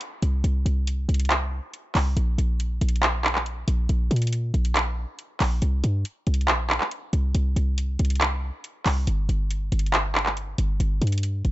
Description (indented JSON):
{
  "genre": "hip hop, trap",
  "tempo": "139 BPM",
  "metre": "4/4",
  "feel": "half-time",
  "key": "unclear",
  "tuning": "A4 = 443 Hz",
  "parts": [
    { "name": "trap drum kit", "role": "drums", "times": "0.0-11.5 s", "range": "handclaps, hi-hat", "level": "-25 LUFS", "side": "right 1 dB", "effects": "vintage 12-bit sampler grit" },
    { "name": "short 808-style bass", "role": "bass", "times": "0.2-11.5 s", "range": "G1 to Bb2", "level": "-23 LUFS", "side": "equal", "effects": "none" }
  ],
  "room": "little or no reverb",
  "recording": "dark, warm production, nothing above 7.9 kHz",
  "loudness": "-22 LUFS",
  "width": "side -16 dB against mid",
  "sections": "0.0-11.5 A section",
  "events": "none",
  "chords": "none",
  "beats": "0.01 | 0.44 0.87 1.30 1.74 | 2.17 2.60 3.03 3.46 | 3.89 4.32 4.76 5.19 | 5.62 6.05 6.48 6.91 | 7.35 7.78 8.21 8.64 | 9.07 9.50 9.94 10.37 | 10.80 11.23"
}